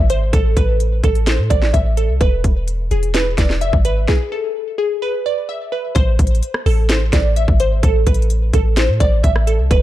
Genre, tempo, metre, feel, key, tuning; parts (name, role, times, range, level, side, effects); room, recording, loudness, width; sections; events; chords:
hip hop, trap; 128 BPM; 4/4; half-time; A harmonic minor; A4 = 441 Hz
glassy wavetable pluck; melody; 0.0-9.8 s; G#4 to E5; -20 LUFS; right 1 dB; chorus, ping-pong delay
clean 808-style bass; bass; 0.0-9.8 s; E1 to A2; -16 LUFS; equal
trap drum kit; drums; 0.1-9.8 s; hi-hat, kick drum, rim click, snare drum; -17 LUFS; equal
little or no reverb; dark, warm production; -14 LUFS; side -14 dB against mid
0.0-6.0 A section; 6.0-9.8 B section
stop 4.1-6.0
0.0 N.C.; 2.2 E5; 6.0 Am